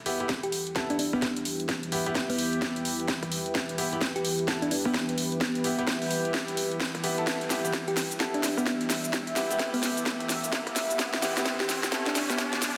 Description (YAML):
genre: bass house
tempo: 129 BPM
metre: 4/4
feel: swing 62% on 16ths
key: E minor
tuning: A4 = 440 Hz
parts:
  - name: deep dark ambient pad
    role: sustained chords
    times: 0.3-12.8 s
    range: E3 to E5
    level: -37 LUFS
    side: equal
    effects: chorus, built-in reverb, sidechain pumping
  - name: bright concert grand piano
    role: stabs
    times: 0.1-12.4 s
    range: B3 to A4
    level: -36 LUFS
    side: equal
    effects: sidechain pumping, tape echo
  - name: house drum kit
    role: drums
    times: 0.1-12.7 s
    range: cabasa, hi-hat, snare drum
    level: -32 LUFS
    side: equal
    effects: overdrive, high-pass filter on hats, studio ambience, high-pass filter on snare, high-pass filter on perc
  - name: electronic kick drum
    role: drums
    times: 0.3-12.5 s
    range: none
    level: -38 LUFS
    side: equal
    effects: overdrive, high-pass filter on kick, studio ambience
  - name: thumb-piano-like synth pluck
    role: melody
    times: 0.4-12.5 s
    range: B3 to G4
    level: -34 LUFS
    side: equal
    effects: chorus, cassette tape, tape echo
  - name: riser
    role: sound effects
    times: 9.1-12.8 s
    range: none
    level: -40 LUFS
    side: equal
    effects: none
room: wet lush hall reverb, RT60 2.0 s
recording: dense, heavily limited modern master, high-pass filter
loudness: -28 LUFS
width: mono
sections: 0.0-12.8 A section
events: build-up 0.0-12.8; drum fill 0.0-12.8; riser 9.1-12.8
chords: 0.0 Em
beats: 0.29 0.76 1.22 | 1.69 2.15 2.62 3.08 | 3.55 4.01 4.48 4.94 | 5.41 5.87 6.34 6.80 | 7.27 7.73 8.20 8.66 | 9.13 9.60 10.06 10.53 | 10.99 11.46 11.92 12.38